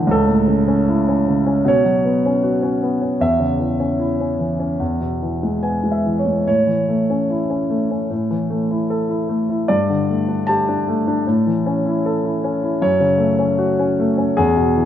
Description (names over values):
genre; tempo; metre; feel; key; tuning
classical, lyrical solo piano; 76 BPM; 4/4; rubato; A major; A4 = 444 Hz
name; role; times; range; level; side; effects
dark concert grand piano; solo; 0.0-14.9 s; C#2 to A5; -16 LUFS; equal; none
room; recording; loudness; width
moderate concert hall reverb, RT60 2.2 s; nothing above 7.9 kHz; -16 LUFS; side -10 dB against mid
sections
0.0-14.9 A section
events
grand piano fill 5.2-6.5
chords
0.1 A/C#; 1.7 Bsus2; 3.2 C#m/E; 4.8 E; 6.5 A; 9.7 Gsus2; 11.3 A; 12.8 F#m